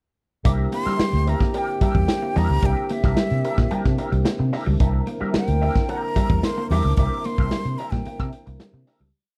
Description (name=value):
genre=funk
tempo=111 BPM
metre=4/4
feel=straight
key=unclear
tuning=A4 = 441 Hz
part: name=electric guitar with an envelope filter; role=accompaniment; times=0.4-9.1 s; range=D4 to G5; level=-35 LUFS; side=equal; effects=wah
part: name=tonewheel organ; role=sustained chords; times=0.4-9.1 s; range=D3 to E4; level=-36 LUFS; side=equal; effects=slow rotary speaker, overdrive
part: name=breathy jazz flute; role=melody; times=0.5-8.5 s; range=E5 to D6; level=-31 LUFS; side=equal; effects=slapback echo
part: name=clear trombone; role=second line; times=0.5-8.8 s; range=G4 to Bb4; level=-33 LUFS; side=equal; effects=none
part: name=vintage muted fingered electric bass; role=bass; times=0.5-9.1 s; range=C2 to C3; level=-25 LUFS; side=equal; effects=none
part: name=raw garage drum kit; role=drums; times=0.5-9.0 s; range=hi-hat, kick drum, snare drum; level=-25 LUFS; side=equal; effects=none
part: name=semi-hollow electric guitar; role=riff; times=0.6-9.1 s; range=G3 to Bb3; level=-32 LUFS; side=equal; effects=spring reverb
room=light reverb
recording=dry, close 1970s-style studio recording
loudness=-22 LUFS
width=mono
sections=0.5-9.1 bridge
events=fade-out 7.0-9.1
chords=0.5 C9